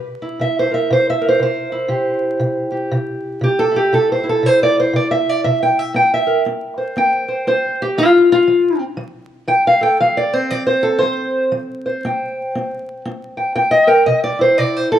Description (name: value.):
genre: acoustic country blues, solo or duo.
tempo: 119 BPM.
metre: 4/4.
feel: swing 61% on 8ths.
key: C mixolydian.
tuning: A4 = 440 Hz.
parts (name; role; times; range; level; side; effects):
fingerpicked steel-string acoustic guitar; solo; 0.0-15.0 s; C3 to G5; -14 LUFS; equal; none.
room: moderate large studio reverb, RT60 1.2 s.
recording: band playing live in one room, vinyl crackle.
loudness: -14 LUFS.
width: side -10 dB against mid.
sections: 0.0-15.0 A section.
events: steel-string acoustic guitar solo 0.0-15.0.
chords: 0.0 C7; 8.0 F5; 12.0 C.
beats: 0.41 0.91 1.41 | 1.92 2.42 2.92 3.43 | 3.93 4.44 4.94 5.45 | 5.95 6.46 6.96 7.47 | 7.97 8.48 8.99 9.49 | 10.00 10.51 11.01 11.52 | 12.03 12.54 13.04 13.55 | 14.06 14.56.